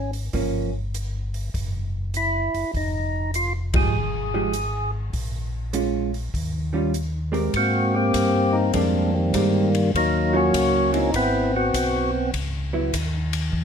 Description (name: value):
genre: soul jazz organ trio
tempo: 100 BPM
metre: 4/4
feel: swing 67% on 8ths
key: F minor, Ab major from 7.5 s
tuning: A4 = 440 Hz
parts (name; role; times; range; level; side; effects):
- percussive tonewheel organ; melody; 0.0-12.3 s; Eb3 to Ab4; -21 LUFS; equal; slow rotary speaker, plate reverb
- mellow tonewheel organ; bass; 0.0-13.6 s; F1 to Ab2; -26 LUFS; left 1 dB; slow rotary speaker
- swinging big-band drum kit; drums; 0.1-13.6 s; hi-hat, kick drum, ride cymbal; -30 LUFS; equal; none
- vintage hollow-body jazz guitar; accompaniment; 0.3-12.9 s; Eb3 to Bb4; -25 LUFS; right 4 dB; none
room: light reverb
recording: dark, warm production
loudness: -20 LUFS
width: side -7 dB against mid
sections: 0.0-7.5 A section; 7.5-13.6 B section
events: band accent 3.6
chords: 0.3 Gm7b5; 1.5 Esus2/F#; 2.7 Fm9; 5.1 Bbm7; 6.3 Eb9; 7.5 Abmaj9; 9.9 Ebm9; 11.1 Ab7alt; 12.3 Dbm11